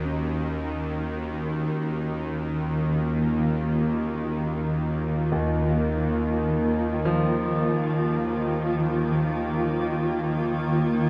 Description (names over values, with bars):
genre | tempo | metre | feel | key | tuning
dark ambient drone | free time | none | none | unclear | A4 = 439 Hz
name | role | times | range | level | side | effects
bowed-like drone | drone | 0.0-11.1 s | Eb2 to Eb3 | -29 LUFS | equal | built-in reverb
bronze singing bowl | texture | 0.0-11.1 s | Db4 | -41 LUFS | equal | none
granular cloud pad | sustained chords | 2.0-11.1 s | Eb3 to F4 | -29 LUFS | equal | built-in reverb, shimmer reverb
clear concert grand piano | arpeggios | 5.3-11.1 s | Eb2 to F3 | -30 LUFS | equal | delay, shimmer reverb
room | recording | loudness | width
wet huge ambient reverb, RT60 9.3 s | none | -26 LUFS | mono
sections
0.0-11.1 A section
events
none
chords
0.0 Ebsus2